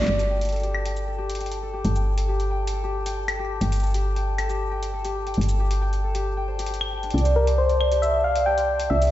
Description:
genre	IDM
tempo	136 BPM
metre	4/4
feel	straight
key	unclear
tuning	A4 = 440 Hz
part	Celtic harp	arpeggios	0.0-9.1 s	D3 to C6	-27 LUFS	right 1 dB	low-pass filter, digital delay
part	woody FM bass	bass	0.0-9.1 s	G1 to C2	-24 LUFS	equal	tube saturation
part	electro analog drum machine	drums	0.0-9.1 s	cabasa, claves, hi-hat, snare drum	-32 LUFS	left 1 dB	digital delay
part	pulsing gated texture	texture	0.0-9.1 s	A5	-37 LUFS	left 5 dB	chorus, built-in reverb
part	soft struck synth lead	melody	7.4-9.1 s	Bb4 to G5	-23 LUFS	left 3 dB	chorus, ping-pong delay
room	moderate echo chamber reverb, RT60 1.7 s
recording	played on a big sound system in a bare room, large studio reverb, nothing above 7.8 kHz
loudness	-21 LUFS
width	side -13 dB against mid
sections	0.1-9.1 A section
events	filter sweep on harp 0.1-9.1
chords	0.1 G5; 7.1 C

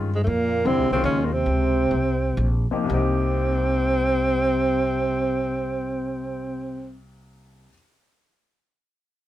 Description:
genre	modal jazz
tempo	110-157 BPM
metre	3/4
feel	swing 66% on 8ths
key	C phrygian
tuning	A4 = 440 Hz
part	warm baby grand piano	accompaniment	0.0-7.7 s	C2 to G4	-28 LUFS	left 5 dB	none
part	upright bass	bass	0.0-7.6 s	Bb1 to G2	-26 LUFS	equal	none
part	mellow trombone	second line	0.1-6.9 s	Ab2 to Db3	-29 LUFS	right 4 dB	none
part	dark tenor saxophone	melody	0.2-7.0 s	Ab3 to Db4	-23 LUFS	equal	none
room	light reverb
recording	none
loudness	-20 LUFS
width	side -13 dB against mid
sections	0.0-2.9 A section; 2.9-6.2 B section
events	slowing down 0.3-2.9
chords	0.0 Bbmadd9; 2.9 Cm7

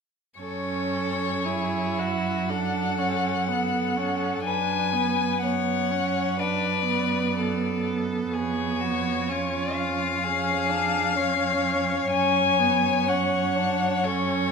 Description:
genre	classical, slow romantic movement for string quartet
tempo	62 BPM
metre	4/4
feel	rubato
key	F# minor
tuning	A4 = 440 Hz
part	rich violin	melody	0.4-14.5 s	C#5 to G#5	-26 LUFS	left 7 dB	none
part	bright violin	second line	0.4-14.5 s	E#4 to C#5	-31 LUFS	left 3 dB	none
part	rich viola	accompaniment	0.4-14.5 s	B3 to E4	-28 LUFS	right 5 dB	none
part	rich cello	bass	0.4-14.5 s	E#2 to F#2	-30 LUFS	right 6 dB	none
room	moderate recital hall reverb, RT60 1.7 s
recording	minimal, uncompressed stereo recording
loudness	-22 LUFS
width	side -5 dB against mid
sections	0.4-14.5 A section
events	none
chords	0.4 F#m; 4.5 Bm/F#; 8.3 C#7/E#; 12.1 F#5

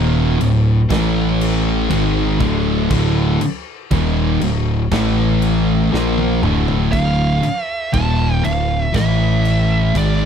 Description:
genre	stoner and doom metal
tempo	60 BPM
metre	4/4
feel	straight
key	D minor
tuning	A4 = 440 Hz
part	overdriven semi-hollow guitar	riff	0.0-6.9 s	D2 to Bb3	-23 LUFS	right 1 dB	none
part	thick fuzz guitar	riff	0.0-10.3 s	D2 to Bb3	-19 LUFS	left 7 dB	distortion
part	thick fuzz guitar	riff	0.0-10.3 s	D2 to Bb3	-21 LUFS	right 11 dB	distortion
part	growling picked electric bass	bass	0.0-10.3 s	D1 to Bb1	-20 LUFS	equal	overdrive
part	big rock drum kit	drums	0.4-10.2 s	crash cymbal, kick drum, snare drum, toms	-26 LUFS	equal	none
part	fuzz lead guitar	melody	6.9-10.3 s	D5 to A5	-21 LUFS	right 4 dB	distortion, tape echo
room	little or no reverb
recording	dry, close 1970s-style studio recording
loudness	-14 LUFS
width	side -8 dB against mid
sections	0.0-6.9 A section; 6.9-10.3 B section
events	drum fill 5.9-6.9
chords	0.0 D5; 0.9 A5; 1.9 D5; 4.9 A5; 5.9 Dm; 8.9 A5

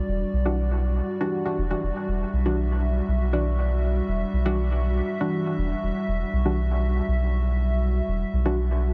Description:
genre	dub techno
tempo	120 BPM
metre	4/4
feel	straight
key	E minor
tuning	A4 = 439 Hz
part	dark analog pad	sustained chords	0.0-8.9 s	G3 to E5	-32 LUFS	equal	chorus
part	soft dub sub bass	bass	0.1-8.9 s	E1 to B1	-26 LUFS	equal	none
part	deep mellow chord stab	stabs	0.5-8.6 s	E3 to F#4	-31 LUFS	equal	chorus, phaser, dub echo
room	light reverb, digital ambience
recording	dense, heavily limited modern master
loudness	-25 LUFS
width	mono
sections	0.0-8.9 A section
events	none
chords	0.0 Em9

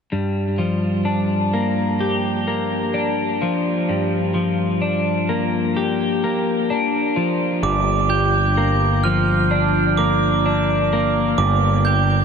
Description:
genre	rock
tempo	64 BPM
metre	4/4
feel	straight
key	G minor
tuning	A4 = 440 Hz
part	twelve-string electric guitar	arpeggios	0.1-12.2 s	G2 to G4	-19 LUFS	left 1 dB	lush chorus, ping-pong delay
part	glockenspiel with hard plastic mallets	arpeggios	7.6-12.2 s	D6 to G6	-20 LUFS	right 6 dB	ping-pong delay
part	growling picked electric bass	bass	7.6-12.2 s	G1	-20 LUFS	right 1 dB	overdrive
room	wet huge ambient reverb, RT60 7.4 s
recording	dreamy mix soaked in reverb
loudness	-17 LUFS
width	side -6 dB against mid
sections	0.1-7.6 A section; 7.6-12.2 B section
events	none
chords	0.1 Gm7

